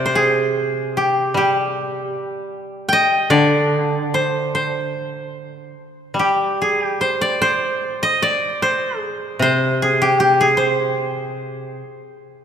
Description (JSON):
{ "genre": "japanese traditional", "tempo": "75 BPM", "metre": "2/4", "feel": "uneven beats, rubato", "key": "unclear", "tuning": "A4 = 441 Hz", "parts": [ { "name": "koto", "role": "melody", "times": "0.0-12.4 s", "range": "G4 to G5", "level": "-18 LUFS", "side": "equal", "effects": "none" }, { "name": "koto", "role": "accompaniment", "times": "0.0-11.8 s", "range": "C3 to G3", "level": "-22 LUFS", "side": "equal", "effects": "none" } ], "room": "wet church reverb, RT60 3.2 s", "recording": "minimal, uncompressed stereo recording", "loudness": "-16 LUFS", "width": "side -8 dB against mid", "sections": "0.0-12.4 A section", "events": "none", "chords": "none", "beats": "0.57 | 1.37 2.16 | 2.94 3.72 | 4.51 5.32 | 6.15 6.99 | 7.79 8.60 | 9.40 10.19 | 10.98 11.81" }